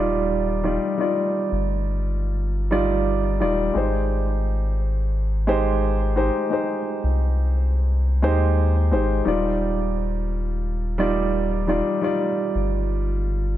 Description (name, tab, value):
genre	sunset chillout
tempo	87 BPM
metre	4/4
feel	straight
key	Eb major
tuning	A4 = 440 Hz
part	warm grand piano	accompaniment	0.0-13.6 s	G3 to D5	-23 LUFS	moving between left 4 dB and right 5 dB	auto-pan, low-pass filter, digital delay
part	round analog bass	bass	0.0-13.6 s	Eb1 to Eb2	-22 LUFS	equal	none
room	light reverb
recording	none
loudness	-20 LUFS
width	side -12 dB against mid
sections	0.0-13.6 A section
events	none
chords	0.0 Ebmaj9; 3.8 Abmaj7; 9.3 Ebmaj9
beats	0.31 | 1.00 1.69 2.38 3.07 | 3.76 4.45 5.14 5.83 | 6.52 7.21 7.89 8.59 | 9.27 9.96 10.65 11.34 | 12.03 12.72 13.41